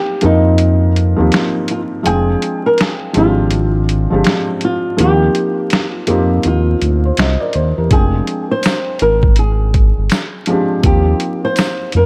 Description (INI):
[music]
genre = lo-fi hip hop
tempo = 82 BPM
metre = 4/4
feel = swing 61% on 16ths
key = F dorian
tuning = A4 = 445 Hz
[part]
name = flamenco guitar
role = melody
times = 0.0-12.1 s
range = Eb4 to C5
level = -21 LUFS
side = equal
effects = none
[part]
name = felt-muted upright piano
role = accompaniment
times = 0.0-12.1 s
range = F3 to G5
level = -20 LUFS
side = equal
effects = cassette tape
[part]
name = smooth gliding synth bass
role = bass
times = 0.2-12.1 s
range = F1 to F2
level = -16 LUFS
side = equal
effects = none
[part]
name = lo-fi sampler-style drum kit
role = drums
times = 0.2-12.1 s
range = finger snaps, hi-hat, kick drum, snare drum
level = -18 LUFS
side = equal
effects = overdrive
[part]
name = tambourine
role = percussion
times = 8.6-11.8 s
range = none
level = -36 LUFS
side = equal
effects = none
[sound]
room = small room ambience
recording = vinyl crackle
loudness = -14 LUFS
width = mono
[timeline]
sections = 0.0-12.1 A section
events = break 0.0-7.9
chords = 0.0 Eb69; 2.1 Fm69; 5.0 Eb69; 7.9 Fm69; 10.8 Eb69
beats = 0.60 1.33 | 2.06 2.79 3.52 4.25 | 4.99 5.72 6.45 7.18 | 7.91 8.64 9.38 10.11 | 10.84 11.57